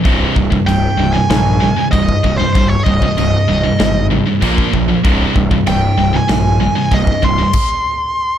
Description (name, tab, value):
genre	heavy metal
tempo	96 BPM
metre	4/4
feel	straight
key	C minor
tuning	A4 = 440 Hz
part	heavy high-gain guitar	riff	0.0-7.5 s	C2 to Bb3	-18 LUFS	right 10 dB	distortion
part	scooped high-gain guitar	riff	0.0-7.5 s	C2 to Bb3	-18 LUFS	left 7 dB	distortion
part	fuzz picked electric bass	bass	0.1-7.4 s	C1 to Bb1	-18 LUFS	equal	overdrive
part	big rock drum kit	drums	0.1-7.7 s	china cymbal, crash cymbal, kick drum, snare drum	-18 LUFS	equal	none
part	high-gain lead guitar	melody	0.7-8.4 s	C5 to C6	-18 LUFS	right 1 dB	distortion, ping-pong delay
room	light reverb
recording	dark, warm production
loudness	-11 LUFS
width	side -10 dB against mid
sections	0.0-8.4 A section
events	stop 7.5-8.4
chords	0.0 Cm; 4.4 Bb5; 5.0 C5